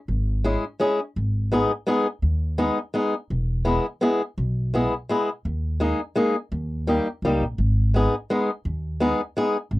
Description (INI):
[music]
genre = musette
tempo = 168 BPM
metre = 3/4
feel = straight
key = G# harmonic minor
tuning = A4 = 440 Hz
[part]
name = upright bass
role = bass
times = 0.1-9.8 s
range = E1 to D#2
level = -23 LUFS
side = equal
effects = none
[part]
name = fingerpicked swing-style acoustic guitar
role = accompaniment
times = 0.4-9.6 s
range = G3 to G#4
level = -21 LUFS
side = left 1 dB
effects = none
[sound]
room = light reverb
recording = dry, close 1970s-style studio recording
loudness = -21 LUFS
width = side -18 dB against mid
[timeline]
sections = 0.0-9.8 A section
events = none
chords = 0.0 C#m; 1.2 G#m; 3.3 E; 5.5 D#sus4; 6.5 D#; 7.6 G#m